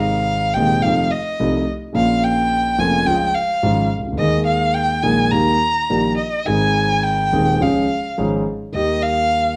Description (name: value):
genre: tango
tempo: 107 BPM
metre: 4/4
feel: rubato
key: Ab major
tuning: A4 = 440 Hz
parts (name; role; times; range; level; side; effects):
- dark violin; second line; 0.0-9.6 s; Eb5 to Bb5; -21 LUFS; equal; none
- dark concert grand piano; accompaniment; 0.0-9.6 s; Eb1 to Ab4; -21 LUFS; equal; none
room: moderate large studio reverb, RT60 0.9 s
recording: none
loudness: -18 LUFS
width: mono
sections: 0.0-9.6 A section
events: violin solo 0.0-9.6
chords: 0.0 Ab; 0.8 F7; 1.9 Bbm; 3.1 Db; 4.2 Ebsus4; 5.3 Eb; 6.5 Ab; 7.6 Db; 8.7 Eb